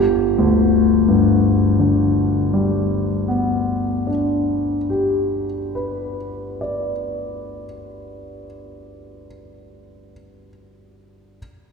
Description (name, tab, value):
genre	classical, romantic nocturne for solo piano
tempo	26 BPM (dotted quarters)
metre	12/8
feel	rubato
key	G major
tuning	A4 = 439 Hz
part	clear concert grand piano	solo	0.0-11.4 s	G1 to D5	-17 LUFS	left 2 dB	none
room	wet church reverb, RT60 2.6 s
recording	minimal, uncompressed stereo recording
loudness	-16 LUFS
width	side -5 dB against mid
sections	0.0-9.0 A section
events	none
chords	0.0 G